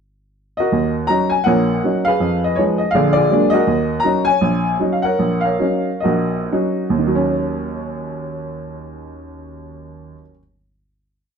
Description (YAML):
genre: solo jazz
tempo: 113-165 BPM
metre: 4/4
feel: swing 63% on 8ths, rubato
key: Eb minor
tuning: A4 = 440 Hz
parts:
  - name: warm upright piano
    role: solo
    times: 0.6-10.4 s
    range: Bb1 to Bb5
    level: -16 LUFS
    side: equal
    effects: none
room: moderate studio reverb, RT60 0.5 s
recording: dark, warm production, faint mains hum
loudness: -15 LUFS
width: side -6 dB against mid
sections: 0.0-0.7 pickup bar; 0.7-7.0 A section; 7.0-11.2 final chord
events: slowing down 3.7-7.0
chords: 0.0 Gb6; 0.7 Ebm7; 2.2 Fm7b5; 2.9 Bb7b13; 3.7 Ebm7